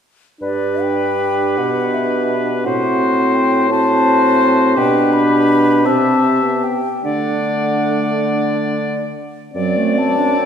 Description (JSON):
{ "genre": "classical, slow romantic movement for wind quintet", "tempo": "44-58 BPM (dotted quarters)", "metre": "6/8", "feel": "rubato", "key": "G major", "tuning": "A4 = 440 Hz", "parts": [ { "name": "wooden flute", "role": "melody", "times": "0.4-10.5 s", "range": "D5 to B5", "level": "-21 LUFS", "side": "left 4 dB", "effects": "none" }, { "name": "clear oboe", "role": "second line", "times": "0.4-10.5 s", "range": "B4 to E5", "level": "-21 LUFS", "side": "left 3 dB", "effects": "none" }, { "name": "clear clarinet", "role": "accompaniment", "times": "0.4-10.5 s", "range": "F#3 to G4", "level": "-22 LUFS", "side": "right 3 dB", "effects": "none" }, { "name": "mellow French horn", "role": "accompaniment", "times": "0.4-10.5 s", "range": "A3 to D4", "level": "-19 LUFS", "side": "equal", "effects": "none" }, { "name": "mellow bassoon", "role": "bass", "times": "0.4-10.5 s", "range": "F#2 to D3", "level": "-20 LUFS", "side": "right 1 dB", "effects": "none" } ], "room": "wet concert hall reverb, RT60 1.9 s", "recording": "heard from further back in the room", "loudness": "-13 LUFS", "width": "side -8 dB against mid", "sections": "0.4-10.5 A section", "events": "none", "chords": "0.4 G; 2.7 F#dim/A; 4.8 G/B; 5.9 C; 7.0 D; 9.5 D7/F#" }